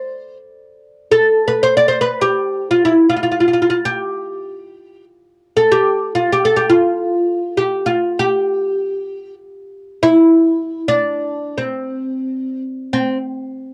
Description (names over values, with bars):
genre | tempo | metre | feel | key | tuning
Arabic maqam ensemble | free time | none | none | C maqam ajam | A4 = 440 Hz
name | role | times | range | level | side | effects
oud | solo | 0.0-13.2 s | C4 to D5 | -16 LUFS | equal | cassette tape
room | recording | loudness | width
moderate booth ambience, RT60 0.2 s | home recording on cassette | -16 LUFS | mono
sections
0.0-12.9 A section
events
none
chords
none